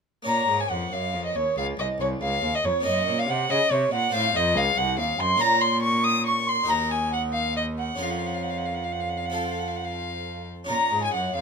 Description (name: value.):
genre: classical, baroque-style sonata movement with continuo.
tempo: 92 BPM (dotted quarters).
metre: 12/8.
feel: rubato.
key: Bb minor.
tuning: A4 = 440 Hz.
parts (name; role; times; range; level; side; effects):
harpsichord; accompaniment; 0.2-11.4 s; C2 to Db5; -32 LUFS; left 1 dB; none.
warm violin; melody; 0.3-11.4 s; Db5 to Eb6; -25 LUFS; left 4 dB; none.
baroque flute; second line; 0.3-11.4 s; Db5 to Eb6; -28 LUFS; right 6 dB; none.
rich cello; bass; 0.3-11.4 s; C2 to Db3; -30 LUFS; right 1 dB; none.
room: light reverb.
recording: minimal, uncompressed stereo recording.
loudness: -22 LUFS.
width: side -5 dB against mid.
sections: 0.3-11.4 A section.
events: none.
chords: 0.3 Bbm; 2.9 Gb; 4.1 F; 5.4 Bbm; 6.7 Ebm; 8.0 Bbm/F; 9.4 F; 10.7 Bbm.